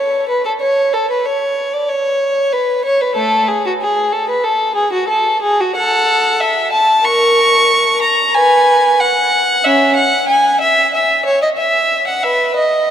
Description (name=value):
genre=classical, baroque-style suite movement for unaccompanied violin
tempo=93 BPM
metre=4/4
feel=rubato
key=A major, E major from 5.8 s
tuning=A4 = 440 Hz
part: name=warm violin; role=solo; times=0.0-12.9 s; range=A3 to C#6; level=-11 LUFS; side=equal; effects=none
room=wet cathedral reverb, RT60 4.7 s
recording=none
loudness=-11 LUFS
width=side -9 dB against mid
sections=0.0-12.9 A section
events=none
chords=none